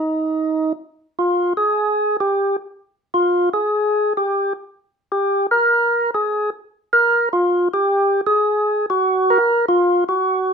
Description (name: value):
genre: jazz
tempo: 152 BPM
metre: 4/4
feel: swing 66% on 8ths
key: unclear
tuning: A4 = 445 Hz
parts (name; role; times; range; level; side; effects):
- percussive tonewheel organ; solo; 0.0-10.5 s; Eb4 to Bb4; -16 LUFS; equal; slow rotary speaker
room: moderate studio reverb, RT60 0.6 s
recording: none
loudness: -16 LUFS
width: side -6 dB against mid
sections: 0.0-1.1 A section; 1.1-10.5 B section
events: tonewheel organ solo 1.1-10.5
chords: none